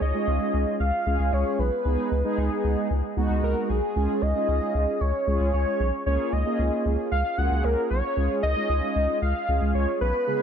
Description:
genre	synth-pop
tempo	114 BPM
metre	4/4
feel	straight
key	Db mixolydian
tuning	A4 = 439 Hz
part	wide unison lead	melody	0.0-10.4 s	Ab4 to Gb5	-26 LUFS	equal	analog delay
part	round analog bass	bass	0.0-10.1 s	Cb2 to Db2	-25 LUFS	equal	none
part	mellow synth brass	accompaniment	0.1-10.4 s	Db3 to Ab4	-28 LUFS	right 2 dB	chorus, analog delay
room	moderate plate reverb, RT60 2.8 s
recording	echo-heavy mix, nothing above 10.6 kHz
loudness	-22 LUFS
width	side -8 dB against mid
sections	0.0-10.4 A section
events	none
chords	0.0 Db; 1.9 Abm/Db; 4.0 Db; 6.1 Bbm7/Db; 8.2 Db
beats	0.27 0.80 1.32 | 1.85 2.38 2.90 3.43 | 3.96 4.48 5.01 5.54 | 6.06 6.59 7.11 7.64 | 8.17 8.69 9.22 9.75 | 10.27

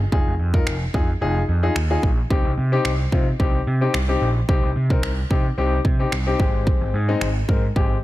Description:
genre	dance-pop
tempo	110 BPM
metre	4/4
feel	straight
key	unclear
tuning	A4 = 439 Hz
part	overdriven picked electric bass	bass	0.0-7.9 s	F1 to C3	-21 LUFS	right 1 dB	sidechain pumping
part	warm grand piano	accompaniment	0.1-8.0 s	Ab3 to Bb4	-24 LUFS	left 4 dB	sidechain pumping
part	pop drum kit	drums	0.1-7.9 s	finger snaps, kick drum	-21 LUFS	right 1 dB	none
room	digital ambience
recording	none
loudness	-18 LUFS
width	side -16 dB against mid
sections	0.0-8.0 A section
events	none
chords	0.0 Fm7; 2.3 Cm; 6.4 Abmaj7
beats	| 0.12 0.67 1.22 1.76 | 2.31 2.85 3.40 3.94 | 4.49 5.03 5.58 6.12 | 6.67 7.21 7.76

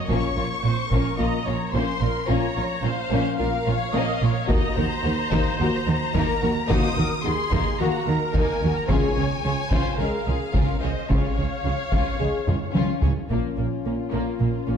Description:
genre	cinematic, epic orchestral film score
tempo	109 BPM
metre	4/4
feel	straight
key	Bb minor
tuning	A4 = 440 Hz
part	warm symphonic violin section	melody	0.0-14.8 s	F4 to Eb6	-30 LUFS	left 4 dB	none
part	rich symphonic viola section	accompaniment	0.0-14.8 s	Bb3 to Eb5	-30 LUFS	right 1 dB	none
part	warm symphonic violin section	second line	0.1-14.8 s	Bb3 to Db5	-30 LUFS	left 4 dB	none
part	mellow French horn section	sustained chords	0.1-14.8 s	Ab3 to Ab4	-31 LUFS	left 6 dB	none
part	rich symphonic double bass section	bass	0.1-14.8 s	Bb1 to Eb2	-27 LUFS	right 4 dB	none
part	warm symphonic cello section	bass	0.1-14.8 s	Bb2 to Eb3	-28 LUFS	right 3 dB	none
part	taiko ensemble	drums	0.1-1.2, 4.5-14.4 s	none	-26 LUFS	left 1 dB	none
room	moderate scoring stage reverb, RT60 1.9 s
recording	dark, warm production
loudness	-21 LUFS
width	side -7 dB against mid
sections	0.0-13.3 A section; 13.3-14.8 B section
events	drum fill 12.5-13.3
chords	0.1 Bbm; 4.5 Ebm; 8.9 Db; 13.3 Bbm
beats	| 0.09 0.64 1.19 1.74 | 2.29 2.84 3.39 3.94 | 4.49 5.04 5.59 6.14 | 6.70 7.25 7.80 8.35 | 8.90 9.45 10.00 10.55 | 11.10 11.65 12.20 12.75 | 13.30 13.85 14.40

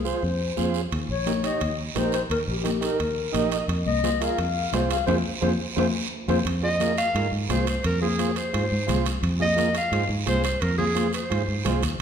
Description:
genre	latin, cumbia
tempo	173 BPM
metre	4/4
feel	straight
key	F minor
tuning	A4 = 438 Hz
part	breathy clarinet	second line	0.0-6.4 s	G4 to F5	-28 LUFS	left 6 dB	none
part	overdriven combo organ	accompaniment	0.0-11.8 s	Eb4 to Eb5	-30 LUFS	right 7 dB	none
part	fingered electric bass	bass	0.0-12.0 s	Bb1 to Ab2	-27 LUFS	equal	none
part	guiro	percussion	0.1-12.0 s	none	-35 LUFS	right 6 dB	none
part	congas	percussion	0.6-11.8 s	none	-30 LUFS	left 6 dB	none
part	timbales	percussion	0.9-12.0 s	none	-34 LUFS	right 8 dB	none
part	breathy clarinet	melody	6.6-11.8 s	Ab4 to F5	-26 LUFS	right 1 dB	none
room	wet recital hall reverb, RT60 1.5 s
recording	minimal, uncompressed stereo recording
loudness	-22 LUFS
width	side -8 dB against mid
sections	0.0-6.5 A section; 6.5-12.0 B section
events	clarinet solo 0.0-6.5; transistor combo organ fill 3.2-3.7; drum fill 5.1-6.5; band accent 5.1-6.5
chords	0.0 Fm; 0.9 Eb; 3.7 Fm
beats	0.23 0.57 | 0.92 1.27 1.61 1.96 | 2.31 2.65 3.00 3.35 | 3.69 4.04 4.38 4.73 | 5.08 5.42 5.77 6.12 | 6.46 6.81 7.16 7.50 | 7.85 8.19 8.54 8.89 | 9.23 9.58 9.93 10.27 | 10.62 10.96 11.31 11.65 | 12.00

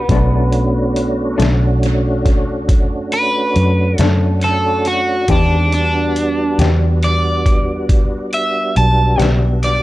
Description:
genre	slow blues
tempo	46 BPM (dotted quarters)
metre	12/8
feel	straight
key	B minor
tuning	A4 = 437 Hz
part	overdriven semi-hollow guitar	melody	0.0-9.8 s	B3 to A5	-18 LUFS	equal	none
part	tonewheel organ	sustained chords	0.0-9.8 s	D#3 to G4	-21 LUFS	right 1 dB	slow rotary speaker, chorus vibrato
part	vintage muted fingered electric bass	bass	0.0-9.8 s	B1 to F#2	-16 LUFS	equal	none
part	electric guitar through a small old amp	accompaniment	0.1-9.5 s	B2 to G4	-21 LUFS	left 6 dB	tremolo
part	trip hop sampler-style drum kit	drums	0.1-9.8 s	hi-hat, kick drum, snare drum	-17 LUFS	equal	tape echo
room	little or no reverb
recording	echo-heavy mix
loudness	-13 LUFS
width	side -17 dB against mid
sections	0.0-9.8 A section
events	none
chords	0.1 Bm7; 5.3 Em7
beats	| 0.09 1.39 2.69 3.99 | 5.29 6.59 7.89 9.20

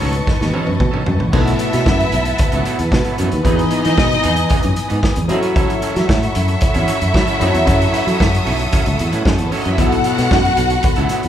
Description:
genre	disco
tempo	114 BPM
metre	4/4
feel	straight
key	unclear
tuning	A4 = 442 Hz
part	dark concert grand piano	accompaniment	0.0-11.3 s	B2 to C#5	-24 LUFS	left 5 dB	none
part	electric guitar at the edge of break-up	accompaniment	0.0-11.3 s	E3 to B4	-25 LUFS	right 4 dB	none
part	clear studio string section	sustained chords	0.0-11.3 s	A4 to D#6	-25 LUFS	left 1 dB	none
part	fingered electric bass	bass	0.0-11.3 s	A1 to F#3	-19 LUFS	equal	none
part	vintage drum kit	drums	0.1-11.3 s	crash cymbal, hi-hat, kick drum, snare drum, toms	-18 LUFS	equal	none
part	clear studio string section	second line	1.3-11.3 s	G#3 to F#5	-20 LUFS	equal	none
room	moderate large studio reverb, RT60 1.4 s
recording	band playing live in one room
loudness	-13 LUFS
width	side -10 dB against mid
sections	0.0-1.3 A section; 1.3-11.3 B section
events	drum fill 0.3-1.3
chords	0.0 B9; 1.3 B7sus4; 3.4 Emaj7; 5.3 F#m7; 9.8 B7sus4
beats	0.28 0.80 | 1.33 1.86 2.39 2.92 | 3.45 3.98 4.50 5.03 | 5.56 6.09 6.62 7.15 | 7.67 8.20 8.73 9.26 | 9.78 10.31 10.84

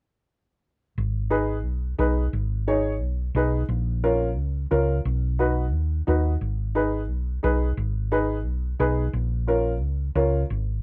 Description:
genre	latin, cumbia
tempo	176 BPM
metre	4/4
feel	straight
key	G# dorian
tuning	A4 = 440 Hz
part	hollow-body short-scale fingered electric bass	bass	1.0-10.8 s	G#1 to D#2	-27 LUFS	equal	none
part	warm upright piano	accompaniment	1.3-10.4 s	C#4 to C#5	-27 LUFS	equal	none
room	little or no reverb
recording	close, detailed microphones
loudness	-25 LUFS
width	mono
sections	1.0-10.8 A section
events	none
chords	1.0 G#m; 3.7 A#m; 5.1 B; 6.4 G#m; 9.1 A#m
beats	| 0.98 1.32 1.66 2.00 | 2.34 2.68 3.02 3.36 | 3.70 4.04 4.38 4.72 | 5.06 5.40 5.74 6.08 | 6.42 6.76 7.10 7.44 | 7.78 8.12 8.46 8.80 | 9.14 9.48 9.82 10.16 | 10.50

